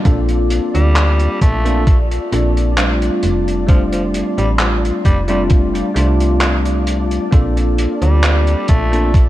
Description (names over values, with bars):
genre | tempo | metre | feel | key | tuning
vaporwave | 66 BPM | 4/4 | straight | unclear | A4 = 440 Hz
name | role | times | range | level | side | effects
bell-like tine electric piano | accompaniment | 0.0-9.1 s | G3 to A4 | -19 LUFS | left 1 dB | wide subtle chorus, tape echo
soft string machine | sustained chords | 0.0-9.3 s | F4 to D6 | -25 LUFS | equal | ensemble chorus
cloth-damped thuddy drum kit | drums | 0.0-9.3 s | handclaps, hi-hat | -22 LUFS | equal | gated reverb
slap-like FM bass | bass | 0.1-9.3 s | F1 to D2 | -16 LUFS | equal | none
electronic kick drum | drums | 0.1-9.3 s | none | -12 LUFS | equal | none
raspy tenor saxophone | melody | 0.7-9.2 s | F3 to A3 | -23 LUFS | equal | vintage 12-bit sampler grit, tape echo
room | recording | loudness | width
light reverb | cassette tape | -12 LUFS | side -15 dB against mid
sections
0.0-9.3 A section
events
none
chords
0.1 Bbmaj7; 3.2 F6; 7.3 Bbmaj7